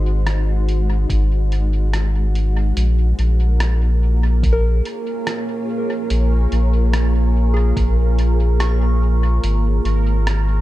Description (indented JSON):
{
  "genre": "ambient dub",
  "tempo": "72 BPM",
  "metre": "4/4",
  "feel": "straight",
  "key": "Bb minor",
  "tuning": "A4 = 435 Hz",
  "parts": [
    { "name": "granular cloud pad", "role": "sustained chords", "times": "0.0-10.6 s", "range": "Ab3 to Db5", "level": "-25 LUFS", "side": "right 1 dB", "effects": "built-in reverb" },
    { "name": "soft synth bell", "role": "arpeggios", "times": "0.0-9.6 s", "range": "Ab4 to Db6", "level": "-30 LUFS", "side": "left 1 dB", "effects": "chorus, phaser, analog delay" },
    { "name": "warm sub bass", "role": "bass", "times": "0.0-10.6 s", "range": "Ab1 to Bb1", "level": "-16 LUFS", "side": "equal", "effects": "none" },
    { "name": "lo-fi sampler-style drum kit", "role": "drums", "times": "0.3-10.4 s", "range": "hi-hat, rim click", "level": "-28 LUFS", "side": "equal", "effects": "dub echo" },
    { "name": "electronic kick drum", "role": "drums", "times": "1.1-7.9 s", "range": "none", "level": "-21 LUFS", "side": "equal", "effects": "none" },
    { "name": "bubbling stepped-filter texture", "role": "texture", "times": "2.8-10.6 s", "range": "Bb4", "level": "-32 LUFS", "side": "right 5 dB", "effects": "chorus, built-in reverb" }
  ],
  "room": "little or no reverb",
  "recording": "echo-heavy mix",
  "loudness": "-15 LUFS",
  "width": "side -16 dB against mid",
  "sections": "0.0-2.8 A section; 2.8-10.6 B section",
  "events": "none",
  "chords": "0.0 Ab7; 2.8 Bbm7; 9.4 Ab7(no3)"
}